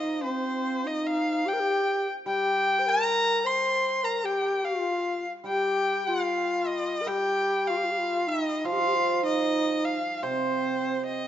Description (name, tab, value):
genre	chinese traditional, Chinese chamber ensemble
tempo	75 BPM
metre	2/4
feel	rubato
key	unclear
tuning	A4 = 440 Hz
part	bright erhu	melody	0.0-11.3 s	C5 to C6	-27 LUFS	left 1 dB	none
part	breathy mellow low xiao	second line	0.0-11.3 s	C4 to C5	-28 LUFS	left 1 dB	none
part	hammered dulcimer	accompaniment	0.0-11.3 s	C3 to G3	-33 LUFS	right 5 dB	none
room	moderate recital hall reverb, RT60 1.7 s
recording	nothing above 7.7 kHz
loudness	-24 LUFS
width	side -10 dB against mid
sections	0.0-11.3 A section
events	none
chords	none